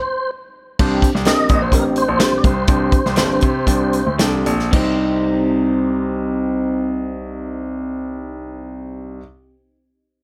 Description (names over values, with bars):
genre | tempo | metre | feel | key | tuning
uptempo 1960s-style soul | 110-130 BPM | 4/4 | straight | C minor | A4 = 438 Hz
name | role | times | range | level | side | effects
mellow tonewheel organ | melody | 0.0-4.2 s | Bb4 to Eb5 | -23 LUFS | equal | chorus vibrato, fast rotary speaker
overdriven tine electric piano | accompaniment | 0.8-9.2 s | C4 to D5 | -24 LUFS | equal | none
warm concert grand piano | bass | 0.8-9.2 s | G1 to C3 | -25 LUFS | equal | none
natural country drum kit | drums | 0.8-4.9 s | crash cymbal, hi-hat, kick drum, snare drum | -20 LUFS | equal | none
electric guitar through a small old amp | stabs | 1.3-9.3 s | G3 to C5 | -26 LUFS | equal | subtle chorus
room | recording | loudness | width
light reverb, small room ambience | none | -18 LUFS | mono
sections
0.8-4.7 A section; 4.7-9.1 B section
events
stop 0.0-0.8; slowing down 0.8-4.7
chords
0.0 N.C.; 0.8 Csus2; 4.7 Cm